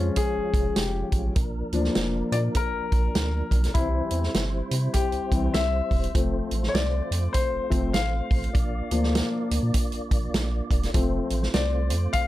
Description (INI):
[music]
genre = uptempo 1960s-style soul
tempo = 100 BPM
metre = 4/4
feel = swing 61% on 8ths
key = F major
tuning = A4 = 440 Hz
[part]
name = warm concert grand piano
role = accompaniment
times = 0.0-12.3 s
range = E3 to F5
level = -28 LUFS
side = left 4 dB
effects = none
[part]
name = percussive tonewheel organ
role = sustained chords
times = 0.0-12.3 s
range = F3 to D5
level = -33 LUFS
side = right 2 dB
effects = fast rotary speaker, chorus vibrato
[part]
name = warm sub bass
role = bass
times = 0.0-12.1 s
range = E1 to C3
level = -27 LUFS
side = equal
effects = none
[part]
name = vintage drum kit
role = drums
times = 0.2-12.3 s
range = hi-hat, kick drum, snare drum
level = -26 LUFS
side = right 1 dB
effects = none
[sound]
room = light reverb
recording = none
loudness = -22 LUFS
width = side -15 dB against mid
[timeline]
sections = 0.0-12.3 A section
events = grand piano solo 0.0-12.3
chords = 0.0 Db/F; 1.4 Bb; 3.8 C; 6.1 F; 8.5 Bb; 10.9 F